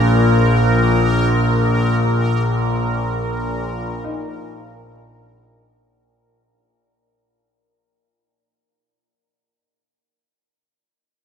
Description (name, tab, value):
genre	ambient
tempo	free time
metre	none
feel	none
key	unclear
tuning	A4 = 438 Hz
part	clear grand piano	arpeggios	0.0-9.6 s	Bb2 to Eb4	-32 LUFS	left 2 dB	none
part	overtone-sweeping drone	drone	0.0-6.0 s	Bb1 to Bb2	-16 LUFS	left 1 dB	chorus, built-in reverb
part	bubbling stepped-filter texture	texture	0.0-5.9 s	Bb4	-24 LUFS	right 2 dB	chorus, built-in reverb
room	wet huge ambient reverb, RT60 7.9 s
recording	dark, warm production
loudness	-15 LUFS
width	side -7 dB against mid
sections	0.0-5.9 A section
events	fade-out 1.0-5.9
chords	0.0 Bbsus4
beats	free time